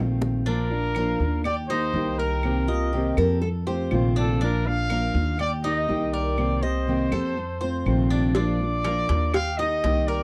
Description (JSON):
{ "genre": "latin, Cuban son and guajira", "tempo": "122 BPM", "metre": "4/4", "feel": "straight", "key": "Bb major", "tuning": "A4 = 439 Hz", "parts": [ { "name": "fingerpicked steel-string acoustic guitar", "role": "accompaniment", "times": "0.0-10.2 s", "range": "C3 to G4", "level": "-29 LUFS", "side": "equal", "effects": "none" }, { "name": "upright bass", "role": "bass", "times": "0.0-10.2 s", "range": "Bb1 to F2", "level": "-28 LUFS", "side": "equal", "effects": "none" }, { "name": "bongos and cowbell", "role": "percussion", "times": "0.2-0.3, 8.3-10.1 s", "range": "none", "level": "-31 LUFS", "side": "equal", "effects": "none" }, { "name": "warm trumpet", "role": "melody", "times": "0.5-10.2 s", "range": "A4 to F5", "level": "-31 LUFS", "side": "equal", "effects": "none" }, { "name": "Cuban tres", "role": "arpeggios", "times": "0.5-10.2 s", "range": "D4 to Eb5", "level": "-34 LUFS", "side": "equal", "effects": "none" }, { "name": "claves", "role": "percussion", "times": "0.9-9.6 s", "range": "none", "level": "-40 LUFS", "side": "equal", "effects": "none" }, { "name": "nylon-string guitar", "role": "second line", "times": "2.7-4.3 s", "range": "F4 to Bb4", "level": "-30 LUFS", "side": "equal", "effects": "none" } ], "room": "studio reverb", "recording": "dry, close 1970s-style studio recording", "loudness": "-24 LUFS", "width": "mono", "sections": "0.5-10.2 A section", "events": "drum fill 0.0-0.5", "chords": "0.5 Bb; 1.5 Eb; 2.4 Cm7; 3.4 F7; 4.4 Bb; 5.4 Eb; 6.4 Cm7; 7.4 F7; 8.4 Bb; 9.3 Eb" }